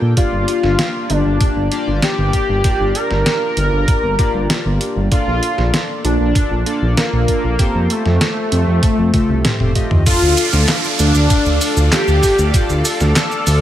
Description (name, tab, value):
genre	synthwave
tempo	97 BPM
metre	4/4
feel	straight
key	G minor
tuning	A4 = 439 Hz
part	chorused polysynth	stabs	0.0-13.6 s	A3 to G5	-24 LUFS	left 2 dB	shimmer reverb
part	dark detuned saw bass	bass	0.0-13.6 s	F1 to Bb2	-16 LUFS	equal	none
part	wide unison lead	melody	0.2-13.6 s	A3 to Bb4	-18 LUFS	left 1 dB	lush chorus, shimmer reverb
part	detuned 8-bit digital drum machine	drums	0.2-13.6 s	cabasa, crash cymbal, handclaps, hi-hat, snare drum, toms	-20 LUFS	equal	studio reverb
part	electronic kick drum	drums	0.2-12.7 s	none	-17 LUFS	equal	studio reverb
part	lush unison pad	sustained chords	10.3-13.6 s	A4 to D6	-25 LUFS	equal	chorus, phaser, sidechain pumping, shimmer reverb
part	downlifter	sound effects	10.1-13.6 s	none	-22 LUFS	right 4 dB	none
room	light reverb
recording	none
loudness	-13 LUFS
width	side -12 dB against mid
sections	0.0-10.1 A section; 10.1-13.6 B section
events	drum fill 9.1-10.1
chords	0.2 Gm7; 5.1 Bbmaj7; 7.6 Fadd9; 10.1 Dm